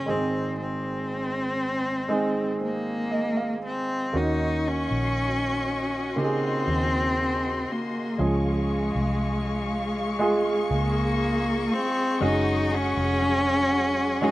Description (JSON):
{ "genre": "pop ballad", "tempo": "59 BPM", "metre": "4/4", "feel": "straight", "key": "unclear", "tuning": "A4 = 441 Hz", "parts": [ { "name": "warm cello", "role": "melody", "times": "0.0-14.3 s", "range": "Ab3 to Eb4", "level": "-26 LUFS", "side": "equal", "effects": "slapback echo" }, { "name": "warm concert grand piano", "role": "accompaniment", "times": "0.0-14.3 s", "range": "Ab1 to F5", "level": "-28 LUFS", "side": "right 2 dB", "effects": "none" }, { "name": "vintage muted fingered electric bass", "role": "bass", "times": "4.1-14.3 s", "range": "F1 to Eb2", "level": "-29 LUFS", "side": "left 1 dB", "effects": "none" }, { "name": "warm studio string section", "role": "sustained chords", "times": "4.2-14.3 s", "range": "Gb4 to Db6", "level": "-32 LUFS", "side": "left 2 dB", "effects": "none" }, { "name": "direct-recorded clean electric guitar", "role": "arpeggios", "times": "12.2-14.3 s", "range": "Gb3 to Ab4", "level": "-34 LUFS", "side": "left 6 dB", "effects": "tremolo, slapback echo" } ], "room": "little or no reverb", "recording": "recorded outdoors, with no room sound", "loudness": "-23 LUFS", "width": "side -16 dB against mid", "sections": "0.0-4.1 A section; 4.1-14.3 B section", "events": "grand piano fill 2.1-4.1", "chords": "0.1 Ab; 4.1 Ebm7; 8.2 Db; 12.2 Gbsus2", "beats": "| 0.07 1.07 2.09 3.12 | 4.14 5.16 6.17 7.18 | 8.19 9.20 10.21 11.21 | 12.22 13.22 14.22" }